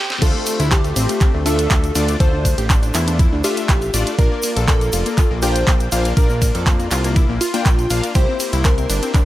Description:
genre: progressive house.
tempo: 121 BPM.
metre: 4/4.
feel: straight.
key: D minor.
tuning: A4 = 440 Hz.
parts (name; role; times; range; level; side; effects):
analog pluck; arpeggios; 0.0-9.2 s; A3 to Bb4; -26 LUFS; left 2 dB; chorus, cassette tape, sidechain pumping, dub echo.
pop drum kit; drums; 0.1-9.2 s; crash cymbal, handclaps, hi-hat, ride cymbal, snare drum; -24 LUFS; right 1 dB; overdrive, sidechain pumping on hats, sidechain pumping on cymbals.
plucky unison lead; melody; 0.2-9.2 s; F4 to C5; -24 LUFS; equal; dub echo.
supersaw stab; stabs; 0.2-9.2 s; A3 to G5; -25 LUFS; left 4 dB; sidechain pumping.
fat analog bass; bass; 0.2-9.0 s; F1 to F2; -20 LUFS; equal; sidechain pumping.
electronic kick drum; drums; 0.2-9.2 s; none; -15 LUFS; equal; overdrive, high-pass filter on kick, high-pass filter on room.
egg shaker; percussion; 0.2-9.2 s; none; -30 LUFS; equal; none.
room: digital ambience.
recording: high-pass filter.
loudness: -14 LUFS.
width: side -15 dB against mid.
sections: 0.2-9.2 A section.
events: break 0.0; drum fill 0.0; drop 0.2-9.2.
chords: 0.2 Dm7; 4.2 Bb; 8.2 C7.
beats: | 0.22 0.71 1.21 1.71 | 2.20 2.70 3.19 3.69 | 4.18 4.68 5.18 5.67 | 6.17 6.67 7.16 7.66 | 8.15 8.65 9.14.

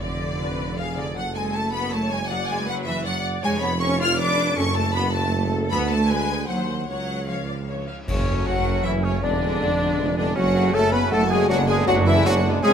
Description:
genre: classical, dramatic, fast romantic movement for symphony orchestra.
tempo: 158 BPM.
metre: 3/4.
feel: straight.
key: F# minor.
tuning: A4 = 438 Hz.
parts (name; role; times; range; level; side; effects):
clear symphonic violin section; melody; 0.0-12.7 s; C#5 to E#6; -30 LUFS; left 1 dB; none.
warm symphonic violin section; second line; 0.0-12.7 s; Ab3 to E#6; -30 LUFS; left 2 dB; none.
rich symphonic viola section; accompaniment; 0.0-12.7 s; C#3 to E#5; -32 LUFS; equal; none.
mellow tuba; bass; 0.0-12.7 s; E#1 to D#2; -28 LUFS; right 3 dB; none.
rich symphonic cello section; bass; 0.0-12.7 s; C#3 to E#4; -28 LUFS; right 1 dB; none.
rich symphonic double bass section; bass; 0.0-12.7 s; E#1 to F#2; -28 LUFS; right 2 dB; none.
cymbal swell, clash cymbals and concert bass drum; percussion; 5.7-8.8 s; none; -33 LUFS; left 1 dB; none.
clear oboe; second line; 8.1-12.7 s; C#4 to B4; -30 LUFS; right 1 dB; none.
large flute ensemble; second line; 8.1-12.7 s; C#5 to B5; -29 LUFS; left 6 dB; none.
mellow French horn section; sustained chords; 8.1-12.7 s; C#3 to B3; -26 LUFS; left 4 dB; none.
clear trumpet; stabs; 8.1-12.7 s; C#4 to B4; -29 LUFS; right 1 dB; none.
clear bassoon; accompaniment; 8.5-12.7 s; C#4 to F#4; -28 LUFS; right 2 dB; none.
room: light reverb.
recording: close, detailed microphones.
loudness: -20 LUFS.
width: side -8 dB against mid.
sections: 0.0-8.1 A section; 8.1-12.7 B section.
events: band accent 8.1-8.5.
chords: 0.0 Fdim7; 1.2 F#m; 2.3 G#m7b5/F#; 3.4 C#7/E#; 4.6 F#m; 5.7 Bm/D; 6.5 D#m6; 6.9 C#; 8.1 F#m; 9.2 Fdim7; 10.4 F#m; 11.5 G#m7b5/F#.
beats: | 0.02 0.41 0.79 | 1.17 1.55 1.93 | 2.31 2.69 3.06 | 3.43 3.81 4.19 | 4.57 4.95 5.33 | 5.71 6.10 6.50 | 6.89 7.30 7.69 | 8.09 8.48 8.86 | 9.24 9.61 9.99 | 10.37 10.75 11.12 | 11.50 11.88 12.26 | 12.64.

